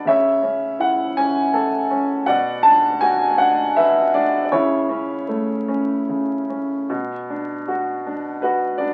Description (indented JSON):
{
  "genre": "classical, lyrical solo piano",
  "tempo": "49-55 BPM (dotted quarters)",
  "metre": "6/8",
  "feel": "rubato",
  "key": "B dorian",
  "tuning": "A4 = 440 Hz",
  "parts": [
    { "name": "clear baby grand piano", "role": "solo", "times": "0.0-8.9 s", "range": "B2 to A5", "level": "-20 LUFS", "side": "equal", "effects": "none" }
  ],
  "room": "moderate studio reverb, RT60 0.6 s",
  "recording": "very old 78 rpm record, vinyl crackle",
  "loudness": "-20 LUFS",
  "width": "mono",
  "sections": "0.0-8.9 A section",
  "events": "none",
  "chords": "0.1 A/C#; 2.3 Bm; 4.5 A/C#; 6.9 Bm",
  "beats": "| 0.07 1.18 | 2.28 3.39 | 4.52 5.69 | 6.91 8.07"
}